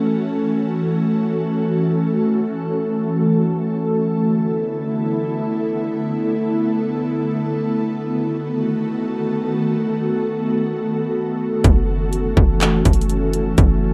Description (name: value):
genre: hip hop, atmospheric cloud-rap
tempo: free time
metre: none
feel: none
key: F# minor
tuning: A4 = 440 Hz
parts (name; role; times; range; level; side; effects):
- ethereal airy pad; sustained chords; 0.0-13.9 s; D3 to A4; -21 LUFS; equal; ensemble chorus, built-in reverb, sidechain pumping
- clean 808-style bass; bass; 11.6-13.9 s; F#1; -21 LUFS; equal; none
- trap drum kit; drums; 11.6-13.7 s; handclaps, hi-hat, kick drum; -18 LUFS; equal; overdrive
room: moderate studio reverb, RT60 0.6 s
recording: rough home demo mix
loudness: -20 LUFS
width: mono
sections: 0.0-13.9 A section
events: none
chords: 0.0 F#m7; 3.9 E7sus4; 7.8 B7; 11.6 F#m7